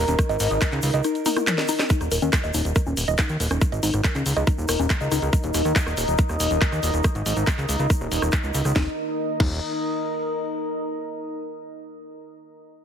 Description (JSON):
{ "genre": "psychedelic trance", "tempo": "140 BPM", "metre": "4/4", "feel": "straight", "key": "unclear", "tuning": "A4 = 440 Hz", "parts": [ { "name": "overtone-sweeping drone", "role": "sustained chords", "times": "0.0-1.9 s", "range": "Eb4 to Bb4", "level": "-29 LUFS", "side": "right 1 dB", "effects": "chorus, built-in reverb, sidechain pumping" }, { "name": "woody wave-folded pluck", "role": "riff", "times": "0.0-5.2, 8.8-9.6 s", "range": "Db4 to Eb5", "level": "-28 LUFS", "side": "moving between left 9 dB and right 6 dB", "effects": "chorus, auto-pan, sidechain pumping, ping-pong delay" }, { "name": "fat analog bass", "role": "bass", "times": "0.0-9.6 s", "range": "Eb1 to Eb2", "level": "-24 LUFS", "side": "equal", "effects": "tube saturation" }, { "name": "garage drum kit", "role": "drums", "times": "0.1-9.5 s", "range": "crash cymbal, handclaps, hi-hat, rim click, snare drum, toms", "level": "-27 LUFS", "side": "equal", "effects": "low-pass filter on hats, low-pass filter on snare, low-pass filter on toms, low-pass filter on cymbals" }, { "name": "egg shaker", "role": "percussion", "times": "0.1-8.7 s", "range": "none", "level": "-34 LUFS", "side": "equal", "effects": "none" }, { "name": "electronic kick drum", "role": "drums", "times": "0.2-9.5 s", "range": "none", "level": "-21 LUFS", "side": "equal", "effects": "none" }, { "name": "formant-sweep wobble bass", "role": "second line", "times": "0.4-0.7 s", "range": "Eb4", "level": "-33 LUFS", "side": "left 2 dB", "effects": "none" }, { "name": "deep dark ambient pad", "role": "texture", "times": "3.5-10.4 s", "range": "Eb4 to Eb5", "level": "-28 LUFS", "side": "equal", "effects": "chorus, built-in reverb, sidechain pumping" } ], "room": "light reverb, digital ambience", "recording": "heavily compressed radio sound", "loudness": "-20 LUFS", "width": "side -8 dB against mid", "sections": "0.0-1.9 A section; 1.9-8.8 B section; 8.8-10.5 C section", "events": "drop 0.0-1.9; drum fill 1.3-1.9", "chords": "0.0 Eb5", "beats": "| 0.19 0.61 1.04 1.47 | 1.90 2.33 2.76 3.19 | 3.62 4.04 4.47 4.90 | 5.33 5.76 6.19 6.62 | 7.04 7.47 7.90 8.33 | 8.76 9.19 9.62 10.04" }